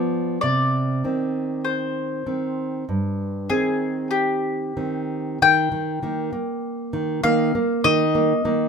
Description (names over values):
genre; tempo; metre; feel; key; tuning
romantic duo for mandolin and classical guitar; 49 BPM; 4/4; rubato; C minor, Eb major from 5.4 s; A4 = 441 Hz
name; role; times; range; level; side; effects
mandolin; melody; 0.0-8.7 s; G4 to G5; -22 LUFS; left 4 dB; none
nylon-string guitar; accompaniment; 0.0-8.7 s; G2 to C4; -22 LUFS; right 2 dB; none
room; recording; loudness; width
light reverb; minimal, uncompressed stereo recording; -20 LUFS; side -5 dB against mid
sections
0.0-5.4 A section; 5.4-8.7 B section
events
none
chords
0.4 Cm; 5.4 Eb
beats
| 0.42 1.65 2.88 4.11 | 5.42 6.64 7.84